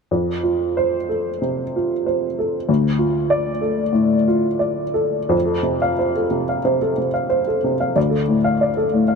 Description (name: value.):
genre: neoclassical minimalist piano.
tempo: 92 BPM.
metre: 4/4.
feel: rubato.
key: F major.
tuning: A4 = 440 Hz.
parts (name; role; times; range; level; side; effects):
warm upright piano; solo; 0.1-9.2 s; D2 to F5; -17 LUFS; equal; none.
room: moderate huge ambient reverb, RT60 4.1 s.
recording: none.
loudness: -17 LUFS.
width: side -5 dB against mid.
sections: 0.1-5.3 A section; 5.3-9.2 B section.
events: none.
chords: 0.1 F; 2.7 Dm; 5.3 F; 8.0 Dm.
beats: | 0.10 0.76 1.41 2.05 | 2.69 3.32 3.96 4.63 | 5.34 6.02 6.67 7.31 | 7.96 8.61.